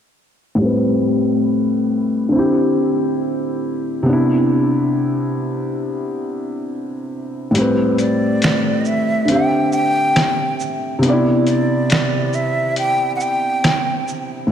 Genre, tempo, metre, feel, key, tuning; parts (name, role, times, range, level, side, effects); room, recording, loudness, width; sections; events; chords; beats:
lo-fi hip hop; 69 BPM; 4/4; swing 58% on 16ths; A4 = 440 Hz
felt-muted upright piano; accompaniment; 0.6-14.5 s; A2 to E5; -17 LUFS; left 1 dB; low-pass filter
lo-fi sampler-style drum kit; drums; 7.5-14.3 s; finger snaps, hi-hat, shaker, snare drum; -21 LUFS; right 1 dB
breathy hollow jazz flute; melody; 8.0-14.1 s; D5 to G5; -20 LUFS; right 1 dB; ping-pong delay
wet lush hall reverb, RT60 2.7 s; dreamy mix soaked in reverb, cassette tape; -15 LUFS; side -9 dB against mid
0.6-7.5 A section; 7.5-14.5 B section
filter sweep on felt piano 0.6-7.5; kick muted 7.5-14.5
0.6 Am9; 2.3 D9sus4; 4.1 Cmaj9; 7.5 Am9; 9.3 D9sus4; 11.0 Cmaj9
| 0.59 1.46 2.33 3.20 | 4.07 4.93 5.80 6.67 | 7.54 8.41 9.28 10.15 | 11.02 11.89 12.76 13.63 | 14.50